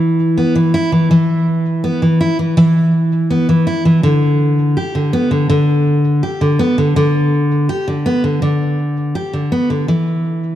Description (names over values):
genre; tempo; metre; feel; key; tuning
folktronica; 82 BPM; 4/4; straight; E minor; A4 = 438 Hz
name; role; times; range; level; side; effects
fingerpicked steel-string acoustic guitar; solo; 0.0-10.6 s; D3 to G4; -12 LUFS; equal; none
room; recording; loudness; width
moderate scoring stage reverb, RT60 1.9 s; dark, warm production; -12 LUFS; side -12 dB against mid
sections
0.0-10.6 A section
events
fade-out 7.9-10.6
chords
none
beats
0.37 | 1.10 1.84 2.57 3.30 | 4.03 4.76 5.50 6.23 | 6.96 7.69 8.42 9.15 | 9.88